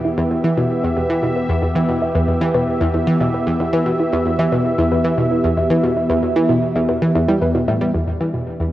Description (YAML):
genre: ambient, sequencer-driven space music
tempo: 114 BPM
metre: 4/4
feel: straight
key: E minor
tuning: A4 = 440 Hz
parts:
  - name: sweeping resonant pad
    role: sustained chords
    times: 0.0-8.7 s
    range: E3 to E5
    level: -19 LUFS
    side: equal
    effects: wide subtle chorus
  - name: warbly dusty pluck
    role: arpeggios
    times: 0.0-7.8 s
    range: E4 to E5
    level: -23 LUFS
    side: equal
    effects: chorus, auto-pan, tape echo
  - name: analog pluck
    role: riff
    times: 0.2-8.6 s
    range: E2 to G3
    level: -19 LUFS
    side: equal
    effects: chorus, cassette tape, tape echo
  - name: bubbling stepped-filter texture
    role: texture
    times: 7.9-8.7 s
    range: D4 to D5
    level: -42 LUFS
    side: left 1 dB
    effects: none
room: moderate plate reverb, RT60 3.1 s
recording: worn, warbling old tape, cassette tape, warbly pitch drift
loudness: -15 LUFS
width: side -14 dB against mid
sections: 0.0-7.9 A section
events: none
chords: 0.0 Em